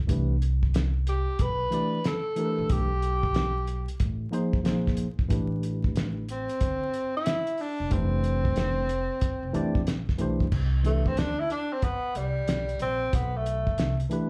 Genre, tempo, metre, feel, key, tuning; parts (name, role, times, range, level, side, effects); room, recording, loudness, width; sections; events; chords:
hip hop, jazz-hop; 92 BPM; 4/4; swing 65% on 16ths; C major; A4 = 440 Hz
upright bass; bass; 0.0-14.0 s; E1 to F2; -31 LUFS; equal
tine electric piano; accompaniment; 0.1-14.3 s; E3 to D5; -32 LUFS; equal
cloth-damped thuddy drum kit; drums; 0.1-14.3 s; crash cymbal, hi-hat, kick drum, snare drum; -30 LUFS; equal
breathy tenor saxophone; melody; 1.1-14.0 s; G3 to B4; -32 LUFS; equal; plate reverb, slapback echo
light reverb; live gig heard through the venue's PA, club ambience, vinyl crackle; -27 LUFS; mono
0.0-10.5 A section; 10.5-14.3 B section
tenor saxophone solo 10.5-14.3
0.1 Cmaj9; 2.7 G9/B; 4.7 Bbsus2; 5.3 Am9; 7.9 Fmaj13; 10.5 Cmaj9; 13.1 Gadd9/B